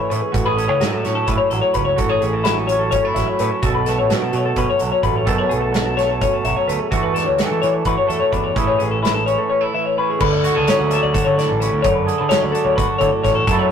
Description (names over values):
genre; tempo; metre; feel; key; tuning
math rock and midwest emo; 256 BPM (eighths); 7/8; straight; unclear; A4 = 440 Hz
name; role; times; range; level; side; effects
twangy electric guitar; accompaniment; 0.0-13.7 s; F#2 to A4; -20 LUFS; right 2 dB; spring reverb
twelve-string electric guitar; arpeggios; 0.0-13.7 s; E4 to F#5; -19 LUFS; left 4 dB; spring reverb
growling picked electric bass; bass; 0.1-13.7 s; A1 to E3; -24 LUFS; right 1 dB; overdrive
loose indie drum kit; drums; 0.1-13.6 s; crash cymbal, hi-hat, kick drum, snare drum; -24 LUFS; right 2 dB; none
room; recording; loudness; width
moderate booth ambience, RT60 0.2 s; rough rehearsal-room recording, tube saturation; -15 LUFS; side -8 dB against mid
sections
0.0-10.2 A section; 10.2-13.7 B section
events
none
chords
0.3 Amaj13; 3.6 B7sus2; 6.9 E9sus4; 8.6 Amaj7; 10.2 Dmaj7